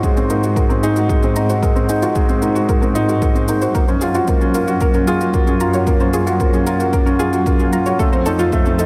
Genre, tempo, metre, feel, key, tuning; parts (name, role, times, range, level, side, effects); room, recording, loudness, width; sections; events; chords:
piano and strings electronica; 113 BPM; 4/4; straight; A4 = 443 Hz
soft round pluck; arpeggios; 0.0-8.9 s; F4 to Bb5; -27 LUFS; equal; chorus, sidechain pumping, diffuse ambient delay
felt-muted upright piano; riff; 0.0-8.9 s; Ab3 to Gb4; -20 LUFS; equal; diffuse ambient delay
muted symphonic cello section; bass; 0.0-8.9 s; F2 to Ab2; -24 LUFS; equal; sidechain pumping
electronic kick drum; drums; 0.0-8.6 s; -20 LUFS; equal
shaker; drums; 0.0-8.9 s; -37 LUFS; equal
moderate cathedral reverb, RT60 6.8 s; dreamy mix soaked in reverb; -16 LUFS; mono
0.0-8.9 A section
0.0 Ab7; 3.8 Gbmaj7; 8.0 F7